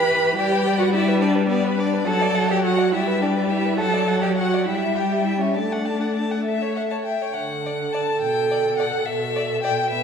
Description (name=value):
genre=quick classical-period movement for string quartet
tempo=66-72 BPM (dotted quarters)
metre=6/8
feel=rubato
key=D major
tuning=A4 = 439 Hz
part: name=rich violin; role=melody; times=0.0-10.0 s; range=B4 to B5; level=-27 LUFS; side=left 5 dB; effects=none
part: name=rich violin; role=second line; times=0.0-9.7 s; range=G4 to A5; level=-28 LUFS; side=left 2 dB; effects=none
part: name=rich viola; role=accompaniment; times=0.0-10.0 s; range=E3 to B4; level=-23 LUFS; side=left 1 dB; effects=none
part: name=dark cello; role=bass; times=0.0-10.0 s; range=B2 to B4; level=-24 LUFS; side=right 4 dB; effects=none
room=wet scoring stage reverb, RT60 1.8 s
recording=recorded in a church or concert hall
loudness=-19 LUFS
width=side -7 dB against mid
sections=0.0-7.4 A section; 7.4-10.0 B section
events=none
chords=0.4 G; 2.1 D/F#; 2.9 Em/G; 3.8 D/F#; 4.7 Em/G; 5.6 D/A; 6.5 A; 7.4 D; 8.2 G/B